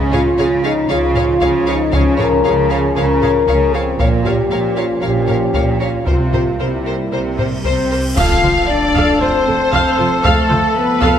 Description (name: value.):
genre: cinematic, epic orchestral film score.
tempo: 116 BPM.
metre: 4/4.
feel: straight.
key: F lydian from 8.2 s.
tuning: A4 = 440 Hz.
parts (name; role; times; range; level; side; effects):
dark French horn section; sustained chords; 0.0-11.2 s; Ab3 to Bb4; -18 LUFS; left 3 dB; none.
warm trombone section; sustained chords; 0.0-11.2 s; F3 to Db4; -25 LUFS; right 4 dB; none.
dark symphonic double bass section; bass; 0.0-11.1 s; F1 to Db2; -23 LUFS; right 3 dB; none.
rich symphonic cello section; bass; 0.0-11.1 s; F2 to Db3; -22 LUFS; right 2 dB; none.
rich symphonic violin section; melody; 0.1-11.2 s; A4 to F5; -25 LUFS; left 5 dB; none.
warm symphonic violin section; second line; 0.1-11.2 s; A4 to F5; -25 LUFS; left 1 dB; none.
warm symphonic viola section; accompaniment; 0.1-11.2 s; C4 to F5; -23 LUFS; right 2 dB; none.
solo taiko drums; drums; 0.1-11.2 s; none; -20 LUFS; equal; none.
cymbal swell and impact; sound effects; 7.4-10.2 s; none; -30 LUFS; equal; none.
bright concert flute; second line; 7.7-11.2 s; A4 to F5; -21 LUFS; left 3 dB; none.
mellow trumpet section; stabs; 8.2-11.2 s; A4; -19 LUFS; right 1 dB; none.
clash cymbals and concert bass drum; percussion; 8.2-9.2 s; none; -23 LUFS; equal; none.
room: moderate concert hall reverb, RT60 2.3 s.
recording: none.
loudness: -13 LUFS.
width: side -9 dB against mid.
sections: 0.0-8.2 A section; 8.2-11.2 B section.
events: cymbal swell 7.4-8.2; band accent 8.2-8.7; impact 8.2-10.2.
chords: 0.0 Db; 4.0 Bbm; 6.1 C7; 8.2 F.